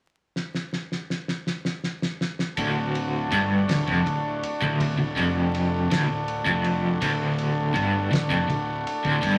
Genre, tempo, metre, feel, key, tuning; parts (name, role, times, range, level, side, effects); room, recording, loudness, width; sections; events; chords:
psychedelic rock; 54 BPM (dotted quarters); 6/8; straight; A4 = 443 Hz
cloth-damped thuddy drum kit; drums; 0.4-9.4 s; kick drum, ride cymbal, snare drum; -33 LUFS; equal
hand-pumped harmonium; sustained chords; 2.6-9.4 s; A3 to A4; -32 LUFS; equal
crunchy overdriven guitar; riff; 2.6-9.4 s; D2 to G2; -26 LUFS; equal; tremolo
fuzz fingered electric bass; bass; 2.6-9.4 s; D1 to G1; -33 LUFS; equal; overdrive
wet studio reverb, RT60 0.5 s; vinyl crackle; -25 LUFS; mono
0.4-2.6 A section; 2.6-9.4 B section
drum fill 0.4-2.6
0.4 N.C.; 2.6 D